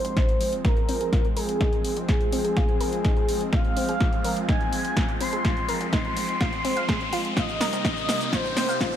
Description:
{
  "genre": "progressive house",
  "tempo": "125 BPM",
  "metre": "4/4",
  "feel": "straight",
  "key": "F minor",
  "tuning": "A4 = 440 Hz",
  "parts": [
    { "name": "expressive portamento lead", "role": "melody", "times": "0.0-9.0 s", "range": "Ab4 to C6", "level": "-28 LUFS", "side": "equal", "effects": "analog chorus, dub echo" },
    { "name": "supersaw pad", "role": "sustained chords", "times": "0.0-9.0 s", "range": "C3 to Eb4", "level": "-32 LUFS", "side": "right 1 dB", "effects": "sidechain pumping" },
    { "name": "plucky analog bass", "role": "bass", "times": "0.0-9.0 s", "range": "F1 to F2", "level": "-46 LUFS", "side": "equal", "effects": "none" },
    { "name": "house drum kit", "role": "drums", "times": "0.0-9.0 s", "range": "cabasa, hi-hat, snare drum", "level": "-30 LUFS", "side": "equal", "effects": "sidechain pumping on perc, small room ambience, sidechain pumping on hats" },
    { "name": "riser", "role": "sound effects", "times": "1.9-9.0 s", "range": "none", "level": "-35 LUFS", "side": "left 2 dB", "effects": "none" },
    { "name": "analog pluck", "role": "arpeggios", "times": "0.2-8.9 s", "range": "C4 to F5", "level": "-33 LUFS", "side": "left 1 dB", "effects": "chorus, sidechain pumping, dub echo" },
    { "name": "electronic kick drum", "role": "drums", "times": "0.2-8.9 s", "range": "none", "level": "-25 LUFS", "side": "equal", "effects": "small room ambience" }
  ],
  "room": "moderate lush hall reverb, RT60 1.7 s, digital ambience",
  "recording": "dark, warm production, high-pass filter",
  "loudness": "-22 LUFS",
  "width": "side -10 dB against mid",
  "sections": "0.0-9.0 A section",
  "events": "build-up 0.0-9.0; drum fill 0.0-9.0; filter sweep on synth pluck 0.0-9.0; filter sweep 0.0-9.0; riser 1.9-9.0",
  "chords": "0.0 Fm; 7.4 Cm7"
}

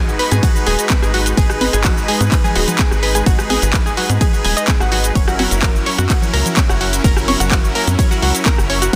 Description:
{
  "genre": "progressive house",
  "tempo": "127 BPM",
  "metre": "4/4",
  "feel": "straight",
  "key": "unclear",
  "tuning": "A4 = 440 Hz",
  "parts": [
    { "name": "filtered supersaw swell", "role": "sustained chords", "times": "0.0-9.0 s", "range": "F#3 to B4", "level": "-24 LUFS", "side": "equal", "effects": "sidechain pumping" },
    { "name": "analog pluck", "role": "arpeggios", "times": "0.0-9.0 s", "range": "F#4 to G#6", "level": "-23 LUFS", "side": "equal", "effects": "chorus, cassette tape, sidechain pumping, delay" },
    { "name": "tight sequencer bass", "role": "bass", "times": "0.0-9.0 s", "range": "D#1 to G#2", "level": "-22 LUFS", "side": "equal", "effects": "sidechain pumping" },
    { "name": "house drum kit", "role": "drums", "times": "0.1-9.0 s", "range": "cabasa, handclaps, hi-hat, ride cymbal, rim click", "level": "-22 LUFS", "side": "equal", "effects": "overdrive, studio reverb" },
    { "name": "congas", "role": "percussion", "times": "0.3-8.6 s", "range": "none", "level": "-27 LUFS", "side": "equal", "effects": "sidechain pumping on perc, studio reverb" },
    { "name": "electronic kick drum", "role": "drums", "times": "0.4-9.0 s", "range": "none", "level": "-18 LUFS", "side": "equal", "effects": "overdrive, studio reverb" }
  ],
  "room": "light reverb, digital ambience",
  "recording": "dense, heavily limited modern master",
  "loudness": "-15 LUFS",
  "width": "mono",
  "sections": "0.0-9.0 A section",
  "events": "none",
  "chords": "0.0 G#m7; 5.2 F#7"
}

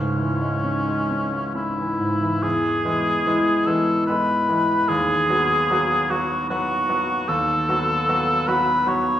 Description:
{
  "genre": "classical, romantic duo for cor anglais and grand piano",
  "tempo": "64-77 BPM",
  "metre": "3/4",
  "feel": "rubato",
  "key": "E major",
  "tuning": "A4 = 440 Hz",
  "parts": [
    { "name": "warm cor anglais", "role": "melody", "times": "0.0-9.2 s", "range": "C#4 to C#5", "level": "-21 LUFS", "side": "left 1 dB", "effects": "none" },
    { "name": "bright grand piano", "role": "accompaniment", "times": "0.0-9.2 s", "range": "C#2 to F#4", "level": "-22 LUFS", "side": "equal", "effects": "none" }
  ],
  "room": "wet recital hall reverb, RT60 1.6 s",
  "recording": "heard from further back in the room",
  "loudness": "-19 LUFS",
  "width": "side -11 dB against mid",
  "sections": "0.0-2.4 A section; 2.4-9.2 B section",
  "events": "none",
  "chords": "0.0 C#m; 2.4 E; 4.9 B/D#"
}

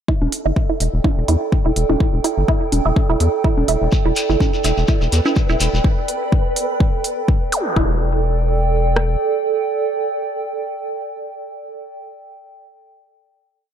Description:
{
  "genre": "minimal techno",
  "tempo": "125 BPM",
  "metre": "4/4",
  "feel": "swing 55% on 16ths",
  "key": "E minor",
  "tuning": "A4 = 440 Hz",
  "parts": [
    { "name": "resonant blip pluck", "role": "riff", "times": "0.1-8.0 s", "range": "E4", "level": "-23 LUFS", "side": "right 2 dB", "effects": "chorus, phaser, sidechain pumping, analog delay" },
    { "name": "house drum kit", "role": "drums", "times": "0.1-9.1 s", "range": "kick drum, rim click", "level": "-17 LUFS", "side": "left 1 dB", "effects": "none" },
    { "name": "warbly tape-like pad", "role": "texture", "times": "0.1-12.0 s", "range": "A4 to G5", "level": "-22 LUFS", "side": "right 4 dB", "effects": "chorus, built-in reverb, sidechain pumping" },
    { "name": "rubbery square bass", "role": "bass", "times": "0.2-9.2 s", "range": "E1 to E2", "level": "-18 LUFS", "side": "left 1 dB", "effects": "sidechain pumping" },
    { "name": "bongos", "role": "percussion", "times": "0.2-5.3 s", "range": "none", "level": "-27 LUFS", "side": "equal", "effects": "analog delay" },
    { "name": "electronic hi-hat", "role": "drums", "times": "0.3-7.6 s", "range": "none", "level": "-24 LUFS", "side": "right 2 dB", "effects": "none" },
    { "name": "shekere", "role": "percussion", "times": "3.9-5.8 s", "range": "none", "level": "-26 LUFS", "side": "left 3 dB", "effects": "none" },
    { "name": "flickering grainy texture", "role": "texture", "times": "4.9-7.8 s", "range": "B4", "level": "-29 LUFS", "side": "right 1 dB", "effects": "built-in reverb, analog chorus, sidechain pumping" },
    { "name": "zap", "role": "sound effects", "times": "7.5-7.7 s", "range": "none", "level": "-25 LUFS", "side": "equal", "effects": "none" }
  ],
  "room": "light reverb, digital ambience",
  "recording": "none",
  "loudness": "-16 LUFS",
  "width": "side -9 dB against mid",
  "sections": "0.1-7.8 groove; 7.8-11.6 final chord",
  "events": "filter sweep on synth arpeggio sound 0.1-5.8",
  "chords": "0.1 Em7"
}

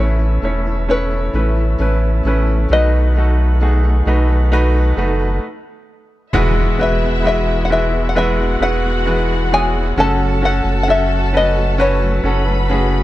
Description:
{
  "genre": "pop ballad",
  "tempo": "66 BPM",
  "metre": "4/4",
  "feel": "straight",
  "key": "E major",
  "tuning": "A4 = 438 Hz",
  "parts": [
    { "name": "open-back banjo", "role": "melody", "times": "0.0-12.7 s", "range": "G#4 to A5", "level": "-19 LUFS", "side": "left 2 dB", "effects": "none" },
    { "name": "bright concert grand piano", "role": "accompaniment", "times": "0.0-13.0 s", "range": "A2 to C#5", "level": "-20 LUFS", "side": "right 1 dB", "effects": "none" },
    { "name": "tonewheel organ", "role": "sustained chords", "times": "0.0-13.0 s", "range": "C#3 to F#4", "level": "-28 LUFS", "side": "equal", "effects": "slow rotary speaker" },
    { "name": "picked steel-string acoustic guitar", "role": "arpeggios", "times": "0.0-13.0 s", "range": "F#2 to B4", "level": "-26 LUFS", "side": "left 2 dB", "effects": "none" },
    { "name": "warm sub bass", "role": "bass", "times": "0.0-13.0 s", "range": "E1 to B1", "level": "-16 LUFS", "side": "equal", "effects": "none" },
    { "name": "warm studio violin section", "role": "second line", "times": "6.3-13.0 s", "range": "E4 to B5", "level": "-25 LUFS", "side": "left 1 dB", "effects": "none" },
    { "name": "impact", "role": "sound effects", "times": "6.3-10.0 s", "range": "none", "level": "-22 LUFS", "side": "equal", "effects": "none" }
  ],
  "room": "small room ambience",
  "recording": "dark, warm production",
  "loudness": "-13 LUFS",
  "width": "side -15 dB against mid",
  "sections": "0.0-6.3 A section; 6.3-13.0 B section",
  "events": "stop 5.4-6.3; impact 6.3-10.0",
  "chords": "0.0 Aadd9; 2.7 B7; 6.3 Eadd9; 10.0 F#m"
}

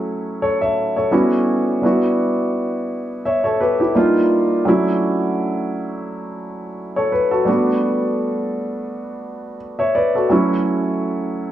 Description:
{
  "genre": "R&B",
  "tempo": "85 BPM",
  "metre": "4/4",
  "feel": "swing 53% on 16ths",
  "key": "E dorian",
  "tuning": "A4 = 438 Hz",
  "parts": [
    { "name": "warm grand piano", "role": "solo", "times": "0.0-11.5 s", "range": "F#3 to E5", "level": "-17 LUFS", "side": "equal", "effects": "none" }
  ],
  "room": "moderate plate reverb, RT60 2.6 s",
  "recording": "worn, warbling old tape, cassette tape, warbly pitch drift, small room ambience",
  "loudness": "-16 LUFS",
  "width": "side -12 dB against mid",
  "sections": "0.0-1.8 A section; 1.8-11.5 A section",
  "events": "none",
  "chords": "0.0 F#m7; 1.1 Em69; 1.8 Em9; 3.9 D#maj9; 4.7 Dmaj9/F#; 7.5 Gmaj9; 10.3 F#m7"
}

